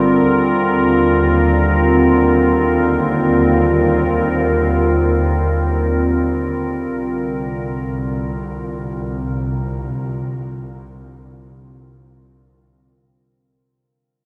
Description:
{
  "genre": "ambient",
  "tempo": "free time",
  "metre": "none",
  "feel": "none",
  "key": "unclear",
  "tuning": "A4 = 439 Hz",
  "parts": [
    { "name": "evolving wavetable pad", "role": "sustained chords", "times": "0.0-13.7 s", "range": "D3 to Bb4", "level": "-18 LUFS", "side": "equal", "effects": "chorus, built-in reverb" },
    { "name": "clear symphonic double bass section", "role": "bass", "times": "0.0-13.7 s", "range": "G1 to Eb2", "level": "-23 LUFS", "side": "equal", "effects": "none" }
  ],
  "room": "wet cathedral reverb, RT60 4.9 s",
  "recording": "in a vast, echoing space",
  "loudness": "-17 LUFS",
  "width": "mono",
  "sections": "0.0-13.7 A section",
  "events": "fade-out 4.7-13.7",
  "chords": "0.3 Ebadd9; 6.9 C5"
}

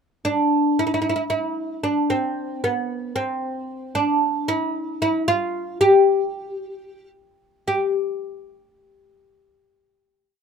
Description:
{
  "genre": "Turkish makam ensemble",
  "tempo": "227 BPM (eighths)",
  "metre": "7/8",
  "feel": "straight",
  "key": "G makam hicaz",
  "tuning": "A4 = 440 Hz",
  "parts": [
    { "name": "oud", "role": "solo", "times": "0.2-7.9 s", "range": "B3 to G4", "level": "-20 LUFS", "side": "equal", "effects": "none" }
  ],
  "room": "light reverb",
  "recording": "minimal, uncompressed stereo recording",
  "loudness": "-20 LUFS",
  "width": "side -6 dB against mid",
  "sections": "0.3-7.7 A section; 7.7-9.5 final note",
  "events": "none",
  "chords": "none"
}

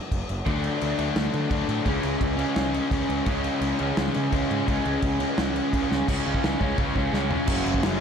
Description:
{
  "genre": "punk rock",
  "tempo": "171 BPM",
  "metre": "4/4",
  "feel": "straight",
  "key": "unclear",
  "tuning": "A4 = 439 Hz",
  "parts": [
    { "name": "fuzz picked electric bass", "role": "bass", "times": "0.1-8.0 s", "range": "F#1 to D3", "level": "-30 LUFS", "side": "right 1 dB", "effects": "overdrive" },
    { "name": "loose indie drum kit", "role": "drums", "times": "0.1-7.9 s", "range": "crash cymbal, kick drum, snare drum, toms", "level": "-28 LUFS", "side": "equal", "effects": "none" },
    { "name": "overdriven electric guitar", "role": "riff", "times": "0.5-8.0 s", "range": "F#2 to D4", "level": "-27 LUFS", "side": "left 8 dB", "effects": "none" },
    { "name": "raw garage guitar", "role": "riff", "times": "0.5-8.0 s", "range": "F#2 to D4", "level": "-30 LUFS", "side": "right 12 dB", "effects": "overdrive" },
    { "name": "tight distorted guitar", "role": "riff", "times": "0.5-8.0 s", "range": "C#3 to F#4", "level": "-32 LUFS", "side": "equal", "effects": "distortion, slapback echo" }
  ],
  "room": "light reverb, studio reverb",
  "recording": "none",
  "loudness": "-22 LUFS",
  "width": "side -7 dB against mid",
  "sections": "0.0-6.1 A section; 6.1-7.5 B section",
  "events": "half time 0.0-6.1; drum fill 5.9, 7.1-7.5",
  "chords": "0.5 D; 1.9 C#m; 7.5 F#m"
}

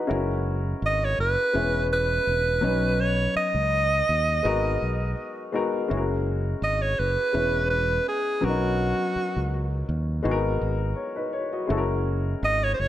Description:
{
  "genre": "lush 1970s-style soul",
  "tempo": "83 BPM",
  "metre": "4/4",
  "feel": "swing 54% on 16ths",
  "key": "B major",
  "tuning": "A4 = 438 Hz",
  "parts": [
    { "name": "warm baby grand piano", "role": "accompaniment", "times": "0.0-12.9 s", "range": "F#3 to A#5", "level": "-28 LUFS", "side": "left 3 dB", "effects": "none" },
    { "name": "fingered electric bass", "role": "bass", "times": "0.1-12.9 s", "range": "E1 to D#2", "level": "-27 LUFS", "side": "equal", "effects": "none" },
    { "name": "breathy alto saxophone", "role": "melody", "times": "0.9-12.9 s", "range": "F#4 to D#5", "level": "-24 LUFS", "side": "right 2 dB", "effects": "slapback echo" }
  ],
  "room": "light reverb",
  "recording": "none",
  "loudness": "-22 LUFS",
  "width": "side -12 dB against mid",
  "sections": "0.0-12.9 A section",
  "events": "none",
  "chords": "0.1 F#9; 1.5 E6; 2.6 Badd9; 4.4 G#m9; 5.9 F#9; 7.3 E6; 8.4 Bmaj9; 10.2 G#m9; 11.7 F#9"
}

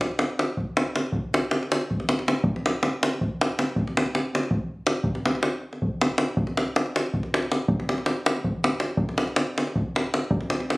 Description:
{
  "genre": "balkan folk",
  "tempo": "321 BPM (eighths)",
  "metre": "7/8",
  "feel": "straight",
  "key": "none",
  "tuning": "none",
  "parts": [
    { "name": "davul", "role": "percussion", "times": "0.0-10.8 s", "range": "none", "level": "-23 LUFS", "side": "equal", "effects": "none" }
  ],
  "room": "moderate booth ambience, RT60 0.2 s",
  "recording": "recorded on a phone in the room, studio reverb",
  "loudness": "-23 LUFS",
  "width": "side -22 dB against mid",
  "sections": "0.0-2.4 A section; 2.4-10.8 B section",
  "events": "none",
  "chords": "none"
}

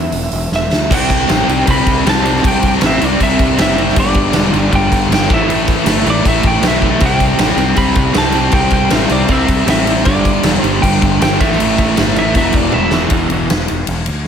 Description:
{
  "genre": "hard rock",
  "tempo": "157 BPM",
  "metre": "4/4",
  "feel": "straight",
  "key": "unclear",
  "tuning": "A4 = 440 Hz",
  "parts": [
    { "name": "lightly driven lead guitar", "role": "melody", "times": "0.0-13.0 s", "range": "D5 to B5", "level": "-19 LUFS", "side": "right 1 dB", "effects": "analog delay" },
    { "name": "fuzz fingered electric bass", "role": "bass", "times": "0.0-14.3 s", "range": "E1 to E2", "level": "-19 LUFS", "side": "equal", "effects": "overdrive" },
    { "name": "huge arena drum kit", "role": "drums", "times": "0.1-14.3 s", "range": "crash cymbal, hi-hat, kick drum, ride cymbal, snare drum, toms", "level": "-15 LUFS", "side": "equal", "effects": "none" },
    { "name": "crunchy overdriven guitar", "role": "riff", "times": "0.9-13.5 s", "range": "E2 to C4", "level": "-19 LUFS", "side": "left 10 dB", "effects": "none" },
    { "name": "crunchy overdriven guitar", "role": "riff", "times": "0.9-13.5 s", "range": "E2 to C4", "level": "-18 LUFS", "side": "right 9 dB", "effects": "tremolo" },
    { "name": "distorted electric guitar", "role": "riff", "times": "0.9-13.1 s", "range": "E2 to C4", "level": "-22 LUFS", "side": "left 2 dB", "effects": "overdrive" }
  ],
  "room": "light reverb, small room ambience",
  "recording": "none",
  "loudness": "-11 LUFS",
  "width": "side -8 dB against mid",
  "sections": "0.9-13.1 A section; 13.1-14.3 B section",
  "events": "drum fill 0.5-0.9, 6.8, 12.7-13.1",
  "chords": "0.0 N.C.; 0.9 C; 4.0 G5; 5.3 A5; 7.0 C; 10.1 G5; 11.4 A5; 12.4 E5"
}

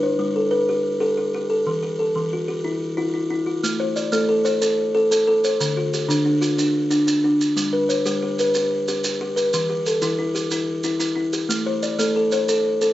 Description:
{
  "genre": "southern african traditional, mbira-style interlocking cycle",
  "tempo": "122 BPM (dotted quarters)",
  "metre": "12/8",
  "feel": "straight",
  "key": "A equiheptatonic",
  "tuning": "A4 = 440 Hz",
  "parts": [
    { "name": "buzzing kalimba", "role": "arpeggios", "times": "0.0-12.9 s", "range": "D3 to D5", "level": "-19 LUFS", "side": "equal", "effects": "slapback echo" },
    { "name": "maracas", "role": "percussion", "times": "3.6-12.9 s", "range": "none", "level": "-28 LUFS", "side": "right 4 dB", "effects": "none" }
  ],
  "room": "light reverb",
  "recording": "recorded outdoors, with no room sound, nothing above 7.8 kHz",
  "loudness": "-19 LUFS",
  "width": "side -14 dB against mid",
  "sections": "0.0-3.6 A section; 3.6-12.9 A section",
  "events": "none",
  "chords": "0.0 G; 1.7 Em; 3.6 Am; 5.6 D; 7.6 G; 9.5 Em; 11.5 Am"
}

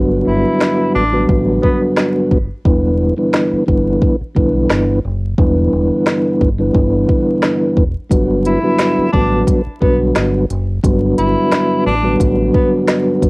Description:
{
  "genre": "hip hop, boom-bap hip-hop",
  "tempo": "88 BPM",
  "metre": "4/4",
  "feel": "swing 55% on 16ths",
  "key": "G major",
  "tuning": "A4 = 440 Hz",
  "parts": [
    { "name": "mellow tonewheel organ", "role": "accompaniment", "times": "0.0-13.3 s", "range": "G2 to B3", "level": "-14 LUFS", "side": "equal", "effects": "overdrive, fast rotary speaker, high-pass filter, low-pass filter, cassette tape" },
    { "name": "deep dub fingered electric bass", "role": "bass", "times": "0.0-13.3 s", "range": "E1 to B1", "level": "-18 LUFS", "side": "equal", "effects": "none" },
    { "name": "breathy tenor saxophone", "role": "melody", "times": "0.3-1.8, 8.5-12.7 s", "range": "B3 to E4", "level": "-18 LUFS", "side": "equal", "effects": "high-pass filter, low-pass filter, cassette tape" },
    { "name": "organic electronic drum kit", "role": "drums", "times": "0.6-13.3 s", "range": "handclaps, hi-hat, kick drum, snare drum", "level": "-16 LUFS", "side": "equal", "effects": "cassette tape" }
  ],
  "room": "light reverb",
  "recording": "home recording on cassette, vinyl crackle",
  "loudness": "-12 LUFS",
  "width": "side -28 dB against mid",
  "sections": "0.0-13.3 A section",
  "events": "break 0.0-8.1",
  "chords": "0.0 Gmaj7; 2.7 Em7; 8.1 Gmaj7"
}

